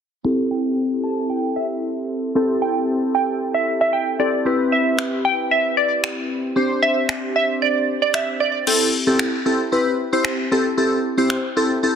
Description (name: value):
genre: dance-pop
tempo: 114 BPM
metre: 4/4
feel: straight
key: A minor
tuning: A4 = 440 Hz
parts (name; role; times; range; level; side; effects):
- glassy digital keys; accompaniment; 0.2-12.0 s; C4 to C5; -20 LUFS; equal; chorus, low-pass filter
- glassy wavetable pluck; melody; 0.5-8.5 s; D5 to A5; -20 LUFS; right 2 dB; chorus, low-pass filter, slapback echo
- house drum kit; drums; 5.0-11.4 s; crash cymbal, finger snaps; -24 LUFS; left 2 dB; none
room: moderate plate reverb, RT60 1.5 s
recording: heavily compressed radio sound, multiband compression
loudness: -18 LUFS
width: side -7 dB against mid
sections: 0.2-8.7 A section; 8.7-12.0 B section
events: filter sweep 0.2-8.7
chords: 0.2 Am7; 4.5 Cmaj7; 6.6 Gsus4; 8.7 C